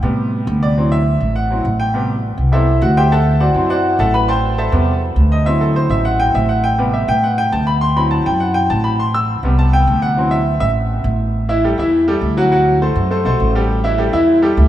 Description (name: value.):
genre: latin, salsa.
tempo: 204 BPM.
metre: 4/4.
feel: straight.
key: unclear.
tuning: A4 = 440 Hz.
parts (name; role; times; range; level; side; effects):
bright baby grand piano; accompaniment; 0.0-14.7 s; C3 to E6; -16 LUFS; equal; none.
upright bass; bass; 0.0-14.7 s; A1 to A2; -16 LUFS; equal; none.
room: moderate cathedral reverb, RT60 5.3 s.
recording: in a vast, echoing space, small room ambience.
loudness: -13 LUFS.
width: side -12 dB against mid.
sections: 0.0-11.3 A section; 11.3-14.7 B section.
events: grand piano solo 0.0-11.3.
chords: 0.0 Am7; 0.8 D9; 1.9 Am7; 3.1 D9; 4.3 Am7; 5.5 D9; 6.6 Am7; 10.2 D9; 11.3 A5; 12.5 D7; 13.7 A5.